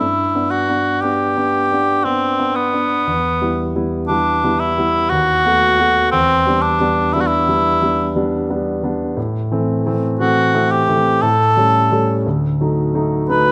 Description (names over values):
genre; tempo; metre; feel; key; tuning
classical, romantic duo for cor anglais and grand piano; 59 BPM; 3/4; rubato; G major; A4 = 440 Hz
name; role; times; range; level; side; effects
warm cor anglais; melody; 0.0-13.5 s; B3 to B4; -18 LUFS; equal; none
clear concert grand piano; accompaniment; 0.0-13.5 s; D2 to F#4; -20 LUFS; equal; none
room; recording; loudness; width
moderate recital hall reverb, RT60 1.6 s; close, detailed microphones; -17 LUFS; mono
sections
0.0-13.5 A section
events
none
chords
0.0 G; 3.1 Em; 5.1 B7/D#; 6.1 Em7; 9.2 Am; 11.2 A7; 12.3 D